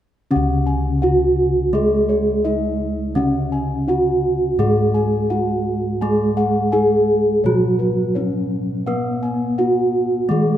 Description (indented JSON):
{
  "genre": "gamelan",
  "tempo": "84 BPM",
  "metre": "4/4",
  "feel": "straight",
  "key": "C# slendro",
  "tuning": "A4 = 440 Hz",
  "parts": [
    { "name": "gamelan-type bronze metallophone", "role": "melody", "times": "0.3-10.6 s", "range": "B3-40c to G#4+20c", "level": "-19 LUFS", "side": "equal", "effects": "none" },
    { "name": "gamelan-type bronze metallophone", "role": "accompaniment", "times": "0.3-10.6 s", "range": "C#3 to B3-40c", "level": "-23 LUFS", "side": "right 1 dB", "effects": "none" },
    { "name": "gamelan-type bossed gongs", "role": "arpeggios", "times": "0.3-10.6 s", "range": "B4-40c to G#5+20c", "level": "-27 LUFS", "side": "left 4 dB", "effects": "none" },
    { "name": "gamelan-type bossed gongs", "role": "bass", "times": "0.3-10.6 s", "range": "C#2 to B4-40c", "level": "-23 LUFS", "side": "left 1 dB", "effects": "none" }
  ],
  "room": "moderate lush hall reverb, RT60 2.8 s",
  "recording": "rough home demo mix",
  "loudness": "-16 LUFS",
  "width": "side -11 dB against mid",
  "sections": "0.3-10.6 A section",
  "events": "none",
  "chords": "none"
}